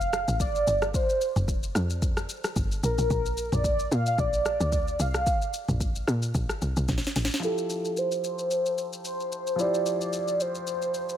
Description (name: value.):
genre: amapiano.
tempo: 111 BPM.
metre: 4/4.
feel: swing 55% on 16ths.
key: F major.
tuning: A4 = 440 Hz.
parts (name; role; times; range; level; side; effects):
warm velvety synth lead; melody; 0.0-11.2 s; A4 to F5; -27 LUFS; right 1 dB; chorus, low-pass filter, tape echo.
woody log drum bass; bass; 0.0-7.3 s; F1 to Bb2; -28 LUFS; equal; none.
afro-pop drum kit; drums; 0.0-11.2 s; hi-hat, kick drum, rim click, shaker, snare drum, toms; -30 LUFS; equal; none.
clear grand piano; accompaniment; 7.4-11.2 s; F3 to C5; -33 LUFS; left 2 dB; low-pass filter.
room: little or no reverb.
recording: none.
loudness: -24 LUFS.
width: side -10 dB against mid.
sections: 0.0-7.4 A section; 7.4-11.2 B section.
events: drop 0.0-7.4; drum fill 6.9-7.4; filter sweep 7.4-11.2.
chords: 0.0 Fadd9; 2.8 Bb; 7.4 Fmaj9.